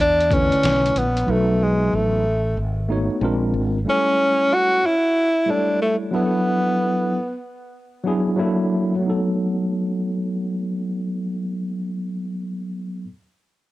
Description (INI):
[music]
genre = hip hop, jazz-hop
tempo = 93 BPM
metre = 4/4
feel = swing 65% on 16ths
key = unclear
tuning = A4 = 440 Hz
[part]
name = breathy tenor saxophone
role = melody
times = 0.0-7.4 s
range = G#3 to F#4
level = -19 LUFS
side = equal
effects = cassette tape, analog delay
[part]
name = mellow fretless electric bass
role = bass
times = 0.0-3.8 s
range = G#1 to E2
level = -23 LUFS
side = equal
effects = none
[part]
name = trip hop sampler-style drum kit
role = drums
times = 0.2-1.3 s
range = hi-hat, kick drum, snare drum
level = -24 LUFS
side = equal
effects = overdrive, cassette tape
[part]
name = tine electric piano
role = accompaniment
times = 0.3-13.1 s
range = D3 to C#5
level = -22 LUFS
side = equal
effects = overdrive, fast stereo tremolo, cassette tape
[sound]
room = moderate studio reverb, RT60 0.5 s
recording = home recording on cassette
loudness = -18 LUFS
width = side -17 dB against mid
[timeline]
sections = 0.0-9.0 A section; 9.0-11.6 B section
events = none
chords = 0.0 Bm11; 1.3 B7; 3.2 A#9; 3.9 A7; 6.1 D69; 8.4 F#7alt; 9.0 B7